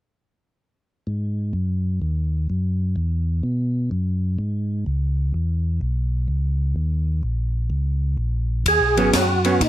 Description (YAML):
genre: soul jazz organ trio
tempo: 126 BPM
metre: 4/4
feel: swing 65% on 8ths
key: G# minor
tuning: A4 = 439 Hz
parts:
  - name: mellow tonewheel organ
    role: bass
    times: 1.1-9.7 s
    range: G#1 to B2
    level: -21 LUFS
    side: equal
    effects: chorus vibrato, slow rotary speaker
  - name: percussive tonewheel organ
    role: melody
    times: 8.7-9.7 s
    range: D#4 to G#4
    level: -18 LUFS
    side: right 2 dB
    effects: slow rotary speaker, overdrive, chorus vibrato
  - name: open jazz drum kit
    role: drums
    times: 8.7-9.7 s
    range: hi-hat, kick drum, ride cymbal, snare drum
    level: -22 LUFS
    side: left 1 dB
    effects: none
  - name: hollow-body jazz guitar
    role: accompaniment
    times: 9.0-9.6 s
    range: F#3 to C#4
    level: -20 LUFS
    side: right 3 dB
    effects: none
room: little or no reverb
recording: close, detailed microphones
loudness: -20 LUFS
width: side -13 dB against mid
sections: 1.1-8.7 A section; 8.7-9.7 B section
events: none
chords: 1.1 G#5; 3.0 Eadd9; 4.9 C#m7; 6.8 D#5; 8.7 G#m11